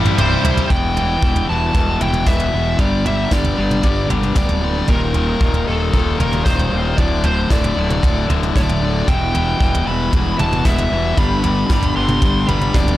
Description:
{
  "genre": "quiet-loud alternative rock",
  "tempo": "115 BPM",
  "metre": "4/4",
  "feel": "straight",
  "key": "unclear",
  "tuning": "A4 = 440 Hz",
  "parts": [
    { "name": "distorted electric guitar", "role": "riff", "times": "0.0-13.0 s", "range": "C2 to E4", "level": "-21 LUFS", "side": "left 7 dB", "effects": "overdrive" },
    { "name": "overdriven electric guitar", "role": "riff", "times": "0.0-0.7 s", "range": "C2 to E4", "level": "-24 LUFS", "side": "right 14 dB", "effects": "none" },
    { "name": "fuzz fingered electric bass", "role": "bass", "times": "0.0-13.0 s", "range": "C1 to C2", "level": "-20 LUFS", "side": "equal", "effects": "overdrive" },
    { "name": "soft brush drum kit", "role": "drums", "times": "0.1-13.0 s", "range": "kick drum, snare drum, toms", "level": "-19 LUFS", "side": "equal", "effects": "none" },
    { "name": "smooth overdriven lead guitar", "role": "melody", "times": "0.2-13.0 s", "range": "A4 to C6", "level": "-22 LUFS", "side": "right 2 dB", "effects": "none" },
    { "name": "twelve-string electric guitar", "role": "arpeggios", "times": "0.7-13.0 s", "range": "D2 to G4", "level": "-26 LUFS", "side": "right 6 dB", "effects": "none" }
  ],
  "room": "studio reverb",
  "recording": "none",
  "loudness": "-14 LUFS",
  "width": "side -15 dB against mid",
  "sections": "0.7-13.0 A section",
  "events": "drum fill 0.0-0.7",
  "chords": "0.0 C; 0.7 Em; 2.8 G; 4.9 Eb; 7.0 D; 9.1 Em; 11.2 G",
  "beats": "0.18 | 0.70 1.23 1.75 2.27 | 2.79 3.32 3.84 4.37 | 4.89 5.41 5.94 6.46 | 6.98 7.51 8.03 8.56 | 9.08 9.60 10.13 10.65 | 11.17 11.70 12.22 12.74"
}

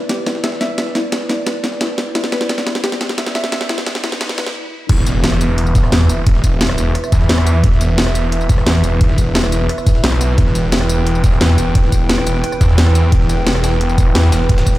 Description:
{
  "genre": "dark technical drum and bass",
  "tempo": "175 BPM",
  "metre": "4/4",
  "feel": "straight",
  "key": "E minor",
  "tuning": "A4 = 440 Hz",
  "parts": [
    { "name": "dark analog pad", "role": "sustained chords", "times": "0.0-14.8 s", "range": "E4 to G5", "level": "-23 LUFS", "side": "equal", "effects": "chorus, sidechain pumping" },
    { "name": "warbly dusty pluck", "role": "arpeggios", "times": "0.0-4.4 s", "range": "E4 to E5", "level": "-25 LUFS", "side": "left 2 dB", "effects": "chorus, sidechain pumping, tape echo" },
    { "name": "riser and impact", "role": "sound effects", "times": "1.1-6.3 s", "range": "none", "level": "-27 LUFS", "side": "equal", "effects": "none" },
    { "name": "breakbeat sampler-style drum kit", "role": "drums", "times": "0.1-14.8 s", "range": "hi-hat, snare drum", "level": "-31 LUFS", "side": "equal", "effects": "none" },
    { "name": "drum and bass drum kit", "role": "drums", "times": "0.1-14.7 s", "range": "crash cymbal, hi-hat, rim click, snare drum, tambourine", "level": "-19 LUFS", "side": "equal", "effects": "none" },
    { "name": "snarling distorted saw bass", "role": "bass", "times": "4.9-14.8 s", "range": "E1 to E2", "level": "-14 LUFS", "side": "equal", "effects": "none" },
    { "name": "electronic kick drum", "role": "drums", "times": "4.9-14.7 s", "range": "none", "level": "-13 LUFS", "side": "equal", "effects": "none" }
  ],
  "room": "digital ambience",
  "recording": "played on a big sound system in a bare room, large studio reverb, high-pass filter",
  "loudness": "-13 LUFS",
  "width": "side -16 dB against mid",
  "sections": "0.0-4.9 A section; 4.9-14.8 B section",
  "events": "build-up 0.0-4.9; drum fill 0.0-4.6; filter sweep 0.0-4.9; stop 4.6-4.9; drop 4.9-14.8; impact 4.9-6.3",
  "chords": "0.0 E5; 4.9 Em",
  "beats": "0.09 0.44 | 0.78 1.12 1.47 1.81 | 2.15 2.49 2.84 3.18 | 3.52 3.87 4.21 4.55 | 4.89 5.24 5.58 5.92 | 6.26 6.61 6.95 7.29 | 7.64 7.98 8.32 8.66 | 9.01 9.35 9.69 10.04 | 10.38 10.72 11.06 11.41 | 11.75 12.09 12.44 12.78 | 13.12 13.46 13.81 14.15 | 14.49"
}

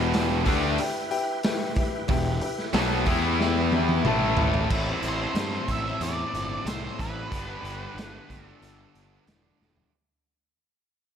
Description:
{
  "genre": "classic rock",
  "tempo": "92 BPM",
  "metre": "4/4",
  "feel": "straight",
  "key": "unclear",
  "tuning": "A4 = 440 Hz",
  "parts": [
    { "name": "dark upright piano", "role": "accompaniment", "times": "0.0-4.6 s", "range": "E4 to A5", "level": "-31 LUFS", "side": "left 5 dB", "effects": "none" },
    { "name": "tonewheel organ", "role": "sustained chords", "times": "0.0-4.7 s", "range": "E4 to A5", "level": "-37 LUFS", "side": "right 2 dB", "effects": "none" },
    { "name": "distorted electric guitar", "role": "riff", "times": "0.0-9.9 s", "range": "E2 to A4", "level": "-32 LUFS", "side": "left 11 dB", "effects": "distortion" },
    { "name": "overdriven electric guitar", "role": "riff", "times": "0.0-4.7 s", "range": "E2 to E4", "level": "-30 LUFS", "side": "equal", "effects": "none" },
    { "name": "tight distorted guitar", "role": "riff", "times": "0.0-9.9 s", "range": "E2 to A4", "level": "-33 LUFS", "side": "right 12 dB", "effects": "distortion" },
    { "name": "fuzz picked electric bass", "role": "bass", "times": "0.0-9.8 s", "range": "E1 to G2", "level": "-30 LUFS", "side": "equal", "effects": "overdrive" },
    { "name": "raw garage drum kit", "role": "drums", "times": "0.1-9.9 s", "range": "crash cymbal, hi-hat, kick drum, snare drum, toms", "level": "-28 LUFS", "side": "right 1 dB", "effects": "none" },
    { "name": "octave-fuzz lead guitar", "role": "melody", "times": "5.1-9.2 s", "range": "B4 to E5", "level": "-34 LUFS", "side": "equal", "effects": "distortion" }
  ],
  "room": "light reverb, small room ambience",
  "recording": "none",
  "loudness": "-23 LUFS",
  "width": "side -8 dB against mid",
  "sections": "0.0-4.7 A section; 4.7-9.9 B section",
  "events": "drum fill 3.4-4.7, 9.6-9.9; fade-out 4.7-9.9",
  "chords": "0.0 Em; 4.0 A5; 4.7 Am; 7.3 G",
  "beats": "0.14 0.79 1.45 | 2.10 2.75 3.40 4.05 | 4.70 5.35 6.00 6.66 | 7.31 7.96 8.62 9.27"
}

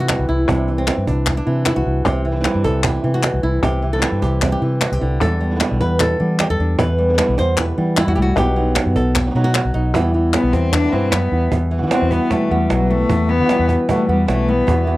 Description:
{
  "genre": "flamenco",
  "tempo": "152 BPM",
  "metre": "4/4",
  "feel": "straight",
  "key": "E minor",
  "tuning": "A4 = 441 Hz",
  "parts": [
    { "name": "flamenco guitar", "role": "melody", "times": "0.0-15.0 s", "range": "E2 to C5", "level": "-20 LUFS", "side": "equal", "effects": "none" },
    { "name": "flamenco guitar", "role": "stabs", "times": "0.0-15.0 s", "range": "B2 to F#4", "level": "-25 LUFS", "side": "right 3 dB", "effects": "none" },
    { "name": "vintage muted fingered electric bass", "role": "bass", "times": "0.0-15.0 s", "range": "B1 to E3", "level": "-19 LUFS", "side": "equal", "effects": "none" },
    { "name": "cajon", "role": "percussion", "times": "0.1-15.0 s", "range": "none", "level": "-23 LUFS", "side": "right 3 dB", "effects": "none" },
    { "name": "palmas hand claps", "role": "percussion", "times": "0.1-11.3 s", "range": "none", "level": "-22 LUFS", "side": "left 6 dB", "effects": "none" },
    { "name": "rich cello", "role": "second line", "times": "10.3-14.9 s", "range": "F#3 to D4", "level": "-20 LUFS", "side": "left 3 dB", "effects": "none" }
  ],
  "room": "light reverb",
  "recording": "dry, close 1970s-style studio recording",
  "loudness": "-15 LUFS",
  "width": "side -17 dB against mid",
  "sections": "0.0-11.5 A section; 11.5-15.0 B section",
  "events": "cello solo 11.5-15.0",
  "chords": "0.0 C; 5.2 Em7; 8.4 B; 9.9 Em",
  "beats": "0.09 | 0.48 0.88 1.27 1.66 | 2.06 2.45 2.84 3.24 | 3.63 4.03 4.42 4.82 | 5.21 5.61 6.00 6.39 | 6.79 7.18 7.58 7.97 | 8.37 8.76 9.15 9.55 | 9.94 10.34 10.73 11.13 | 11.52 11.92 12.31 12.71 | 13.10 13.49 13.89 14.28 | 14.68"
}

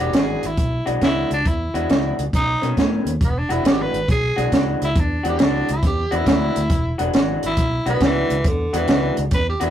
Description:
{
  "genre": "electric blues shuffle",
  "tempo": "137 BPM",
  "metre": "4/4",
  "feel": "swing 67% on 8ths",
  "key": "E mixolydian",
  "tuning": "A4 = 440 Hz",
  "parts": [
    { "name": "growling tenor saxophone", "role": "melody", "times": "0.0-9.7 s", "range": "D3 to B4", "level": "-23 LUFS", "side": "right 1 dB", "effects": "none" },
    { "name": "electric guitar through a small old amp", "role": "riff", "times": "0.0-9.7 s", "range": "B2 to F#4", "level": "-23 LUFS", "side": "left 2 dB", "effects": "none" },
    { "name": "fingered electric bass", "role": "bass", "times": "0.0-9.7 s", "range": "E1 to B2", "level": "-24 LUFS", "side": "equal", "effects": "none" },
    { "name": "compact cocktail drum kit", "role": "drums", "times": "0.1-9.7 s", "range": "hi-hat, kick drum, snare drum", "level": "-20 LUFS", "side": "right 1 dB", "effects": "none" }
  ],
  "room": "wet booth ambience, RT60 0.2 s",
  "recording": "rough rehearsal-room recording, warm saturation",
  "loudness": "-17 LUFS",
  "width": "side -10 dB against mid",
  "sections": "0.0-3.2 A section; 3.2-9.7 B section",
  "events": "tenor saxophone solo 3.2-9.7",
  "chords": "0.0 E9; 2.3 B9; 3.2 E9",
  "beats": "0.13 0.57 1.01 | 1.45 1.89 2.33 2.77 | 3.20 3.64 4.08 4.52 | 4.95 5.39 5.83 6.26 | 6.70 7.14 7.57 8.01 | 8.45 8.88 9.32"
}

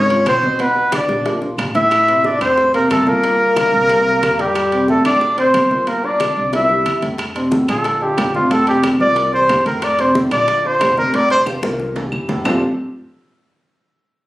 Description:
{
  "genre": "Afro-Cuban jazz",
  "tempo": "182 BPM",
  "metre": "4/4",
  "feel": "straight",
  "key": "F major",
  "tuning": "A4 = 439 Hz",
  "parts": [
    { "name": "warm trumpet", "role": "melody", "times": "0.0-11.4 s", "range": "F4 to E5", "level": "-15 LUFS", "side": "equal", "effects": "none" },
    { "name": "growling tenor saxophone", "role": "second line", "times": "0.0-7.0 s", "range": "G3 to E4", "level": "-20 LUFS", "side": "left 2 dB", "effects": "none" },
    { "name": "warm baby grand piano", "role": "accompaniment", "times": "0.0-12.6 s", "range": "A2 to Bb4", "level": "-21 LUFS", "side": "equal", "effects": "none" },
    { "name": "upright bass", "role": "bass", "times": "0.0-12.6 s", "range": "F1 to G2", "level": "-26 LUFS", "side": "equal", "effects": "none" },
    { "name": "congas", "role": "percussion", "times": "0.1-12.5 s", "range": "none", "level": "-28 LUFS", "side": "left 1 dB", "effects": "none" },
    { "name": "timbales", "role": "percussion", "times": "0.1-12.5 s", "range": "none", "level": "-27 LUFS", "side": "right 3 dB", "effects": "none" },
    { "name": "bongos", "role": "percussion", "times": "0.3-12.5 s", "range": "none", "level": "-27 LUFS", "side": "left 2 dB", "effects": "none" },
    { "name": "claves", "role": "percussion", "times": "0.3-12.5 s", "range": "none", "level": "-29 LUFS", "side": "equal", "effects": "none" }
  ],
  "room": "moderate small room ambience, RT60 0.5 s",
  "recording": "recorded on a phone in the room, studio reverb",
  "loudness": "-13 LUFS",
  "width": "side -17 dB against mid",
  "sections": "0.0-7.2 A section; 7.2-12.5 B section; 12.5-13.8 C section",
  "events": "drum fill 0.9-1.9, 6.5-7.2, 11.5-12.5; trumpet solo 7.2-12.5",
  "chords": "0.0 Db; 0.6 Bmmaj7; 1.3 Bb5; 1.9 Am7; 3.2 Gmadd11; 3.9 C5; 4.6 Fadd9; 5.2 D5; 5.9 Gm; 6.5 C7; 7.2 F6; 7.9 Bb69; 8.5 F6; 9.2 C7; 9.8 F6; 10.5 Bbadd9; 11.1 F6; 11.8 C7; 12.5 F69",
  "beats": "0.27 | 0.60 0.93 1.26 1.59 | 1.92 2.25 2.58 2.91 | 3.24 3.57 3.90 4.23 | 4.56 4.89 5.22 5.55 | 5.88 6.21 6.53 6.86 | 7.19 7.52 7.85 8.18 | 8.51 8.84 9.17 9.50 | 9.82 10.15 10.48 10.81 | 11.14 11.47 11.80 12.12 | 12.45"
}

